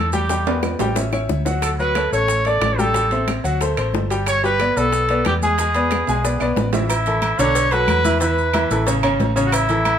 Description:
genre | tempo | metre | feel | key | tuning
latin, salsa | 182 BPM | 4/4 | straight | A major | A4 = 440 Hz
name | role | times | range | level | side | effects
warm trumpet | melody | 0.0-10.0 s | E4 to D5 | -20 LUFS | right 1 dB | none
bright upright piano | accompaniment | 0.0-10.0 s | C#3 to G#5 | -22 LUFS | left 2 dB | none
hollow-body short-scale fingered electric bass | bass | 0.0-10.0 s | G1 to E2 | -23 LUFS | equal | none
congas | percussion | 0.1-10.0 s | none | -30 LUFS | left 4 dB | none
maracas | percussion | 0.1-10.0 s | none | -32 LUFS | right 6 dB | none
bongos and cowbell | percussion | 0.3-10.0 s | none | -30 LUFS | left 5 dB | none
timbales and agogo bells | percussion | 0.3-10.0 s | none | -27 LUFS | right 7 dB | none
claves | percussion | 0.6-10.0 s | none | -32 LUFS | right 4 dB | none
room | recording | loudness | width
moderate large studio reverb, RT60 0.9 s | minimal, uncompressed stereo recording | -16 LUFS | side -8 dB against mid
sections
0.0-6.9 A section; 6.9-10.0 B section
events
drum fill 0.3-1.6, 6.1-6.9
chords
0.3 Em7; 1.0 A6; 1.6 Dmaj7; 2.9 Am7; 3.6 D5; 4.3 G69; 5.6 E7; 6.9 A; 7.6 Bm7; 8.2 E5; 8.9 A

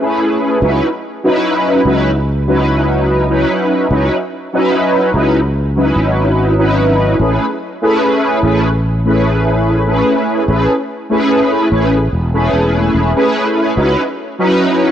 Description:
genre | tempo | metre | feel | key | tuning
vaporwave | 73 BPM | 4/4 | straight | C# minor | A4 = 440 Hz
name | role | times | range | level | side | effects
mellow synth brass | accompaniment | 0.0-14.9 s | F#3 to B4 | -12 LUFS | equal | ensemble chorus, cassette tape, analog delay
sustaining fretless electric bass | bass | 0.6-13.9 s | E1 to C#2 | -15 LUFS | equal | none
room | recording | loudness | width
light reverb | worn, warbling old tape, cassette tape, warbly pitch drift | -11 LUFS | side -10 dB against mid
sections
0.6-14.9 A section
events
break 0.0-0.6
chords
0.0 Amaj9; 0.6 C#m11; 7.2 Amaj9; 13.8 C#m11

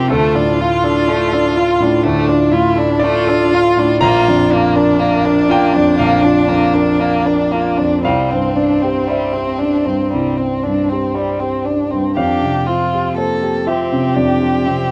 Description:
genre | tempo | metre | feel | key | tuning
neoclassical piano and strings | 60 BPM | 4/4 | uneven beats, rubato | D minor | A4 = 440 Hz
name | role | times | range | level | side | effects
dark violin | melody | 0.0-14.9 s | G3 to A4 | -19 LUFS | equal | none
rich cello | second line | 0.0-14.9 s | Bb3 to F4 | -21 LUFS | equal | none
warm baby grand piano | accompaniment | 0.0-14.9 s | Bb1 to Bb5 | -18 LUFS | equal | none
room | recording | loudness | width
moderate small room reverb, RT60 0.6 s | dark, warm production | -15 LUFS | mono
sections
0.0-14.9 A section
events
none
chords
0.1 Dm; 4.0 Bb; 8.0 Cadd9; 12.1 Fsus2

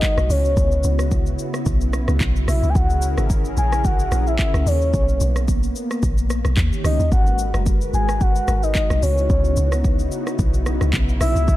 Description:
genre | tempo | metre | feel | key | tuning
amapiano | 110 BPM | 4/4 | swing 55% on 16ths | unclear | A4 = 439 Hz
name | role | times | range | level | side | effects
soft octave-layered synth lead | melody | 0.0-11.6 s | C#5 to G#5 | -24 LUFS | left 1 dB | chorus, tremolo, ping-pong delay
warm analog pad | sustained chords | 0.0-11.6 s | C#3 to B4 | -27 LUFS | equal | chorus, sidechain pumping
afro-pop drum kit | drums | 0.0-11.6 s | handclaps, hi-hat, kick drum, rim click, shaker | -22 LUFS | equal | none
deep log drum bass | bass | 0.2-11.6 s | F#1 to D#2 | -20 LUFS | equal | none
room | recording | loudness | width
digital ambience | dark, warm production | -17 LUFS | side -15 dB against mid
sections
0.0-11.6 A section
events
none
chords
0.3 C#m7; 2.8 F#13; 4.9 Bsus2; 6.6 D#7; 7.1 G#m9; 9.0 C#m11

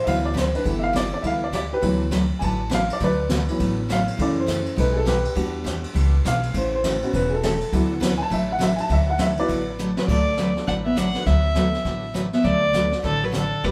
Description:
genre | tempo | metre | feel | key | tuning
country, western swing | 204 BPM | 4/4 | swing 61% on 8ths | D major | A4 = 440 Hz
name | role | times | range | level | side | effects
warm upright piano | accompaniment | 0.0-12.9 s | E3 to A5 | -27 LUFS | equal | none
picked steel-string acoustic guitar | accompaniment | 0.1-13.7 s | B2 to B4 | -29 LUFS | equal | none
upright bass | bass | 0.1-13.7 s | E1 to F#2 | -27 LUFS | equal | none
jazz brush drum kit | drums | 0.1-13.7 s | brushed snare drum, crash cymbal, hi-hat, kick drum, ride cymbal, snare drum | -32 LUFS | equal | none
dark fiddle | melody | 10.0-13.7 s | A4 to F#5 | -26 LUFS | equal | none
hollow-body jazz guitar | second line | 10.0-13.7 s | D3 to D4 | -29 LUFS | equal | none
room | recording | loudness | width
wet studio reverb, RT60 0.7 s | band playing live in one room | -22 LUFS | mono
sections
0.0-10.1 A section; 10.1-13.7 B section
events
upright piano solo 0.0-10.1; drum fill 9.8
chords
0.1 D6; 0.7 G6; 1.8 D6; 4.2 F#m7; 4.8 Baug7; 5.4 Em7; 6.5 A6; 7.7 D6

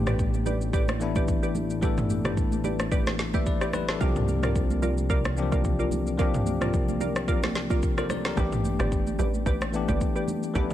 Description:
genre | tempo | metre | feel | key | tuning
amapiano | 110 BPM | 4/4 | swing 55% on 16ths | unclear | A4 = 440 Hz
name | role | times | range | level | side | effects
bell-like tine electric piano | accompaniment | 0.0-10.7 s | E3 to E5 | -29 LUFS | left 6 dB | medium stereo tremolo
fat analog bass | bass | 0.0-8.3 s | A1 to C2 | -30 LUFS | equal | none
glassy wavetable pluck | stabs | 0.1-10.7 s | F4 to D5 | -32 LUFS | right 2 dB | chorus, ping-pong delay
deep house drum kit | drums | 0.1-10.7 s | kick drum, rim click, shaker, snare drum, toms | -27 LUFS | equal | none
congas | percussion | 0.3-10.7 s | none | -36 LUFS | right 8 dB | none
tight log drum bass | bass | 8.4-10.7 s | G1 to A1 | -29 LUFS | equal | none
room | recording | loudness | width
light reverb | none | -23 LUFS | side -12 dB against mid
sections
0.0-10.7 A section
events
none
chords
0.0 A9sus4; 4.0 C9sus4; 8.4 A9sus4

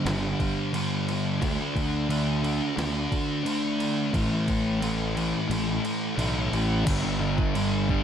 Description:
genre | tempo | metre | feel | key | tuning
rock, shoegaze and dream pop | 88 BPM | 4/4 | straight | unclear | A4 = 440 Hz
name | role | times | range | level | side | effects
thick fuzz guitar | riff | 0.0-8.0 s | G2 to D4 | -26 LUFS | equal | distortion, lush chorus
fuzz fingered electric bass | bass | 0.1-8.0 s | G1 to D2 | -29 LUFS | equal | overdrive
detuned 8-bit digital drum machine | drums | 0.1-8.0 s | crash cymbal, kick drum, snare drum | -32 LUFS | equal | none
room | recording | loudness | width
little or no reverb | dark, warm production | -24 LUFS | side -8 dB against mid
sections
0.0-6.9 A section; 6.9-8.0 B section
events
kick and snare drop out 5.5-6.9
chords
0.0 G5; 1.4 D5; 4.1 A5; 6.9 G5

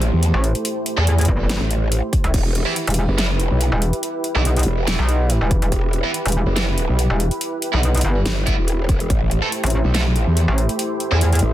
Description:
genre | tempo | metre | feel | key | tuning
heavy wobble dubstep | 142 BPM | 4/4 | swing 53% on 16ths, half-time | E minor | A4 = 439 Hz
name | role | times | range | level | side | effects
supersaw pad | sustained chords | 0.0-11.5 s | A3 to C5 | -26 LUFS | right 1 dB | sidechain pumping, low-pass filter
growl bass | bass | 0.0-11.5 s | E1 to E2 | -19 LUFS | equal | chorus, overdrive
big-room dance drum kit | drums | 0.0-11.5 s | crash cymbal, hi-hat, snare drum | -26 LUFS | equal | none
metallic wobble bass | bass | 0.3-11.4 s | E1 to E2 | -17 LUFS | equal | chorus, overdrive
tight distorted guitar | stabs | 1.0-11.2 s | E3 to A4 | -27 LUFS | right 3 dB | distortion, digital delay
electronic kick drum | drums | 1.3-2.4, 5.5-5.8, 8.5-9.2 s | none | -20 LUFS | equal | none
room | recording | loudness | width
little or no reverb | dense, heavily limited modern master | -17 LUFS | side -13 dB against mid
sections
0.0-11.5 A section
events
none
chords
0.0 Am7; 2.3 Em; 9.1 Am7

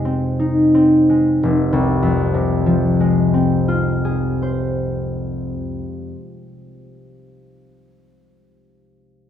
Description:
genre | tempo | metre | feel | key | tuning
classical, solo harp piece | 30 BPM (dotted quarters) | 6/8 | rubato | F minor | A4 = 439 Hz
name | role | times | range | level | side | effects
concert harp | solo | 0.0-6.9 s | F1 to C5 | -15 LUFS | left 1 dB | none
room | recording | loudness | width
moderate recital hall reverb, RT60 1.4 s | none | -15 LUFS | side -10 dB against mid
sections
0.0-1.4 A section; 1.4-5.5 B section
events
slowing down 0.0-1.4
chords
0.0 Fm7; 1.4 Fm

